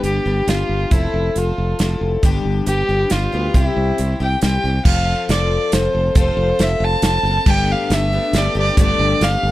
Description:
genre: folk rock and heartland rock.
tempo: 137 BPM.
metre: 3/4.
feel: straight.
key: unclear.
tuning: A4 = 443 Hz.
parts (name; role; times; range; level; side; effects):
dark fiddle; melody; 0.0-9.5 s; E4 to A5; -20 LUFS; right 1 dB; none.
picked twelve-string acoustic guitar; accompaniment; 0.0-9.5 s; G2 to A4; -23 LUFS; left 5 dB; none.
modern bright fingered electric bass; bass; 0.0-9.5 s; F1 to D2; -20 LUFS; equal; none.
natural country drum kit; drums; 0.0-9.3 s; crash cymbal, hi-hat, kick drum, snare drum; -17 LUFS; right 1 dB; none.
room: little or no reverb.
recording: dry, close 1970s-style studio recording.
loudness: -15 LUFS.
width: side -15 dB against mid.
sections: 0.0-4.9 A section; 4.9-9.5 B section.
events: none.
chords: 0.0 G; 0.9 Fmaj7; 2.2 G; 3.5 C; 4.9 F; 7.5 Gadd9.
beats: 0.04 0.48 | 0.92 1.36 1.80 | 2.23 2.67 3.11 | 3.55 3.98 4.42 | 4.86 5.29 5.73 | 6.17 6.60 7.04 | 7.47 7.91 8.34 | 8.78 9.21.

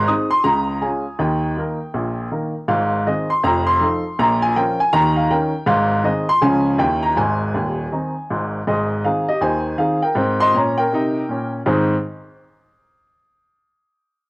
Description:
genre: jazz, stride piano.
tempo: 161 BPM.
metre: 4/4.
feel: swing 63% on 8ths.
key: Ab major.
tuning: A4 = 440 Hz.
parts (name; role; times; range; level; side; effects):
clear upright piano; solo; 0.0-11.9 s; Eb1 to Eb6; -16 LUFS; equal; cassette tape.
room: moderate spring reverb, RT60 1.4 s, small room ambience.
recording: home recording on cassette.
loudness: -16 LUFS.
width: side -24 dB against mid.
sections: 0.0-8.7 A section; 8.7-11.7 B section; 11.7-13.2 C section.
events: none.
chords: 0.5 Db; 1.2 Eb; 2.7 Ab; 3.4 F7; 4.2 Bbm; 4.9 Eb7; 5.7 Ab; 6.4 Db; 6.8 Eb7b9; 7.2 Ab; 10.2 Eb7/Ab; 11.7 Ab.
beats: 0.08 0.45 0.82 | 1.20 1.57 1.94 2.32 | 2.69 3.06 3.44 3.81 | 4.18 4.55 4.93 5.30 | 5.67 6.05 6.42 6.79 | 7.17 7.54 7.91 8.29 | 8.66 9.03 9.41 9.78 | 10.15 10.53 10.90 11.28 | 11.65.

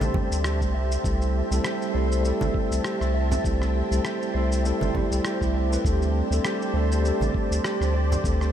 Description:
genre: sunset chillout.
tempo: 100 BPM.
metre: 4/4.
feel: swing 56% on 16ths.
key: A minor.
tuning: A4 = 440 Hz.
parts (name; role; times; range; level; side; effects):
tine electric piano; accompaniment; 0.0-8.5 s; G3 to C5; -28 LUFS; right 1 dB; auto-pan, tape echo.
soft string machine; sustained chords; 0.0-8.5 s; G4 to B5; -30 LUFS; equal; ensemble chorus, vintage 12-bit sampler grit.
warm sub bass; bass; 0.0-8.5 s; G1 to D2; -24 LUFS; equal; none.
electronic shaker and rim click; drums; 0.0-8.5 s; none; -34 LUFS; equal; none.
congas; percussion; 0.0-8.2 s; none; -35 LUFS; right 2 dB; none.
electronic kick drum; drums; 0.1-8.4 s; none; -28 LUFS; equal; none.
mellow electric guitar; arpeggios; 0.4-8.2 s; G4 to E5; -36 LUFS; right 1 dB; low-pass filter, tape echo.
room: moderate huge ambient reverb, RT60 8.0 s.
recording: dreamy mix soaked in reverb.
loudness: -22 LUFS.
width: side -10 dB against mid.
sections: 0.0-8.5 A section.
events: none.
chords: 0.0 D7sus4; 0.7 Am7; 5.8 D7sus4.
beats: 0.45 | 1.05 1.65 2.25 2.85 | 3.45 4.05 4.65 5.25 | 5.85 6.45 7.05 7.65 | 8.25.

